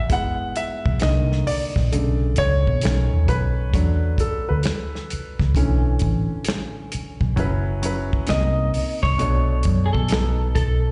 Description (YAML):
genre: R&B, neo-soul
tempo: 66 BPM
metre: 4/4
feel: swing 63% on 16ths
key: unclear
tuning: A4 = 440 Hz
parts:
  - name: warm concert grand piano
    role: accompaniment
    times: 0.0-10.9 s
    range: B2 to F#5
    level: -28 LUFS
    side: equal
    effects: slapback echo
  - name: vintage muted fingered electric bass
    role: bass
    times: 0.0-10.9 s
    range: F#1 to B2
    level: -23 LUFS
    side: equal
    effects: none
  - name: warm soul drum kit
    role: drums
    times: 0.1-10.8 s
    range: finger snaps, hi-hat, kick drum, snare drum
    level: -26 LUFS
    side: equal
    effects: none
  - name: electric guitar through a small old amp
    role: melody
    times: 8.3-10.9 s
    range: G#4 to Eb5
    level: -28 LUFS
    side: equal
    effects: slapback echo
room: little or no reverb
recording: live gig heard through the venue's PA, recital hall reverb, nothing above 10.7 kHz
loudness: -21 LUFS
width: mono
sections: 0.0-7.4 A section; 7.4-10.9 B section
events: grand piano solo 0.0-7.4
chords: 0.1 F#7sus4; 1.0 Cm9; 1.9 Bm9; 2.8 B7; 3.7 E9sus4; 5.6 Bm11; 7.4 F#7sus4; 8.3 Cm7; 9.2 Bm9; 10.1 B7